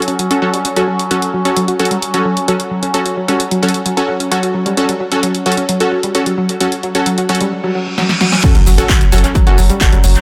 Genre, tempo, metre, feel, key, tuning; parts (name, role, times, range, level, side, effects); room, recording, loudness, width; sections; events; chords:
driving peak-time techno; 131 BPM; 4/4; straight; F# minor; A4 = 441 Hz
analog pluck; riff; 0.0-10.1 s; F#3 to F#4; -20 LUFS; equal; chorus, sidechain pumping, tape echo
supersaw stab; stabs; 0.0-9.9 s; C#4 to A4; -20 LUFS; equal; sidechain pumping, analog delay
overtone-sweeping drone; drone; 0.0-10.2 s; F#3 to C#4; -26 LUFS; equal; chorus, built-in reverb, phaser, sidechain pumping
punchy analog drum machine; drums; 0.0-10.2 s; crash cymbal, handclaps, hi-hat, shaker, snare drum; -21 LUFS; equal; analog delay
reverse cymbal and impact; sound effects; 7.7-10.2 s; -22 LUFS; equal
electronic kick drum; drums; 8.4-9.9 s; -14 LUFS; equal; overdrive
saturated sub bass; bass; 8.6-10.2 s; F#1; -14 LUFS; equal; overdrive, sidechain pumping, low-pass filter
moderate echo chamber reverb, RT60 2.3 s; echo-heavy mix; -14 LUFS; mono
0.0-8.4 A section; 8.4-10.2 B section
filter sweep on synth arpeggio sound 0.0-8.4; reverse cymbal 7.7-8.4; drum fill 8.0-8.4; drop 8.4-10.2; impact 8.4-10.2
0.0 F#m